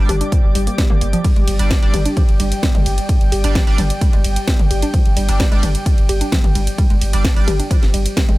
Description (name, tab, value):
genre	driving peak-time techno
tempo	130 BPM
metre	4/4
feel	straight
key	unclear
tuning	A4 = 440 Hz
part	sync-sweep polysynth	stabs	0.0-7.5 s	G3 to D5	-27 LUFS	right 4 dB	chorus, phaser, sidechain pumping, digital delay
part	saturated sub bass	bass	0.0-8.4 s	G1	-18 LUFS	equal	overdrive, sidechain pumping, low-pass filter
part	airy breathy pad	texture	0.0-8.4 s	G3 to D6	-25 LUFS	left 1 dB	chorus, sidechain pumping
part	woody wave-folded pluck	riff	0.1-8.3 s	F3 to G4	-24 LUFS	equal	chorus, sidechain pumping, digital delay
part	techno drum kit	drums	0.1-8.4 s	hi-hat, ride cymbal, snare drum, toms	-23 LUFS	equal	sidechain pumping on hats, sidechain pumping on cymbals, sidechain pumping on toms
part	electronic kick drum	drums	0.3-8.3 s	none	-15 LUFS	equal	none
room	little or no reverb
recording	none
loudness	-13 LUFS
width	side -19 dB against mid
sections	0.0-8.4 A section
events	band accent 8.2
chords	0.0 G5